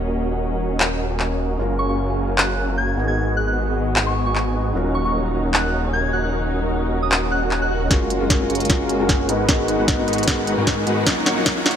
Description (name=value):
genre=future bass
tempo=152 BPM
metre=4/4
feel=half-time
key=Eb minor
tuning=A4 = 440 Hz
part: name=felt-muted upright piano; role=accompaniment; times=0.0-11.7 s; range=Gb3 to Bb4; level=-26 LUFS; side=left 2 dB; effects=sidechain pumping, digital delay
part: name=warm studio string section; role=sustained chords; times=0.0-11.8 s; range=Db3 to Gb4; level=-31 LUFS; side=left 1 dB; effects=sidechain pumping, low-pass filter
part: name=supersaw chords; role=riff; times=0.0-11.8 s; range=Ab3 to Bb5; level=-24 LUFS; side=right 1 dB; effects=sidechain pumping, low-pass filter, digital delay
part: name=wide detuned saw bass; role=bass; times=0.0-11.8 s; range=Eb1 to Ab2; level=-24 LUFS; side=equal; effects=chorus, sidechain pumping
part: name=trap drum kit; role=drums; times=0.8-11.8 s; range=handclaps, hi-hat, snare drum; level=-21 LUFS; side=equal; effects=none
part: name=soft synth bell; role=melody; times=1.8-7.8 s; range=Db6 to Ab6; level=-26 LUFS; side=equal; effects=chorus, sidechain pumping, tape echo
part: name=swell and riser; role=sound effects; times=7.3-11.8 s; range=none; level=-31 LUFS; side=right 2 dB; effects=none
part: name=electronic kick drum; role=drums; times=7.9-11.5 s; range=none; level=-21 LUFS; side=equal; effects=overdrive
room=moderate lush hall reverb, RT60 1.8 s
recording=high-pass filter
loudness=-18 LUFS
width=side -8 dB against mid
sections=0.0-7.9 A section; 7.9-11.8 B section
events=swell 7.3-7.9; build-up 7.9-11.8; drum fill 7.9-11.8; filter sweep on supersaw synth 7.9-11.8; filter sweep 7.9-11.8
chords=0.0 Ebm7; 1.6 Gbmaj9; 3.0 Abm7; 4.7 Ebm7; 7.9 Gbmaj9; 9.3 Abm7; 11.1 Ebm7